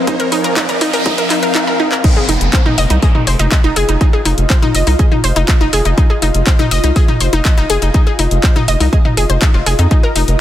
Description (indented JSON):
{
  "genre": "melodic techno",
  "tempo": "122 BPM",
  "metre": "4/4",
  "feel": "straight",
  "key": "F minor",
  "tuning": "A4 = 440 Hz",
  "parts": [
    { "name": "riser, noise sweep and downlifter", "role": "sound effects", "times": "0.0-6.0 s", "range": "none", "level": "-22 LUFS", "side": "right 1 dB", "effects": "none" },
    { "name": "ethereal airy pad", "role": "texture", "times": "0.0-10.4 s", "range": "F3 to Ab5", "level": "-22 LUFS", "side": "left 1 dB", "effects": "ensemble chorus, built-in reverb, sidechain pumping" },
    { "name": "analog pluck", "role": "arpeggios", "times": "0.1-10.2 s", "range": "Eb4 to Eb5", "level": "-17 LUFS", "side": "left 1 dB", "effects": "chorus, sidechain pumping, tape echo" },
    { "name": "electronic kick drum", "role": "drums", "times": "0.1-10.0 s", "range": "none", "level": "-12 LUFS", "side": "equal", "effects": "high-pass filter on kick, high-pass filter on room" },
    { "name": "house drum kit", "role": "drums", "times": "0.1-10.4 s", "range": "crash cymbal, handclaps, hi-hat, toms", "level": "-19 LUFS", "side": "left 1 dB", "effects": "high-pass filter on hats, high-pass filter on toms, high-pass filter on snare, high-pass filter on cymbals, high-pass filter on room" },
    { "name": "round analog bass", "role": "bass", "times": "2.3-10.4 s", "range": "F1 to F2", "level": "-14 LUFS", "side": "equal", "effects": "sidechain pumping" }
  ],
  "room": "light reverb",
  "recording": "dense, heavily limited modern master",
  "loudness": "-10 LUFS",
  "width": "side -12 dB against mid",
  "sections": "0.0-2.0 A section; 2.0-10.4 B section",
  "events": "build-up 0.0-2.0; riser 0.0-1.6; noise sweep 0.1-2.0; drum fill 1.6-2.0; drop 2.0-10.4",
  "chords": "0.0 Abadd9/F; 2.0 Fm7",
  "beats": "| 0.07 0.57 1.06 1.55 | 2.04 2.53 3.02 3.52 | 4.01 4.50 4.99 5.48 | 5.98 6.47 6.96 7.45 | 7.94 8.44 8.93 9.42 | 9.91 10.40"
}